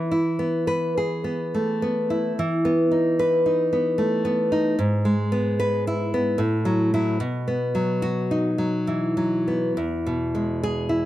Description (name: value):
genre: romantic piece for solo classical guitar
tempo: 68-76 BPM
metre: 3/4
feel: rubato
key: E major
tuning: A4 = 441 Hz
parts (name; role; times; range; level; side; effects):
- nylon-string guitar; solo; 0.0-11.1 s; E2 to B4; -21 LUFS; equal; none
room: small room ambience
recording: dry, close 1970s-style studio recording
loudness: -21 LUFS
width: side -14 dB against mid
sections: 0.0-11.1 A section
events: none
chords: 0.0 E; 2.4 B7/E; 4.8 E/G#; 6.4 F#m7/A; 7.2 B; 9.8 E